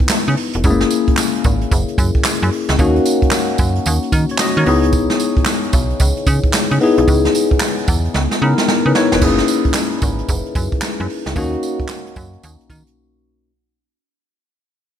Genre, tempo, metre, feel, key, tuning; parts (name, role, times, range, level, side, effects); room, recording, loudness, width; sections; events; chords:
R&B, new jack swing; 112 BPM; 4/4; swing 63% on 16ths; A4 = 440 Hz
tine electric piano; accompaniment; 0.0-13.5 s; G#3 to D#5; -17 LUFS; left 3 dB; phaser
jazz brush drum kit; drums; 0.0-13.0 s; crash cymbal, handclaps, hi-hat, kick drum, snare drum, tambourine; -17 LUFS; right 1 dB
slap-like FM bass; bass; 0.3-12.8 s; E1 to D#3; -18 LUFS; right 1 dB
light reverb, small room ambience; faint mains hum; -13 LUFS; side -9 dB against mid
0.0-9.2 A section; 9.2-13.5 B section
drum fill 8.1-9.2; fade-out 9.2-13.5; break 13.0-13.5
0.0 C#m7 (rootless); 0.6 F#7; 2.8 D#m7; 4.7 C#m7; 9.2 F#7; 11.4 D#m7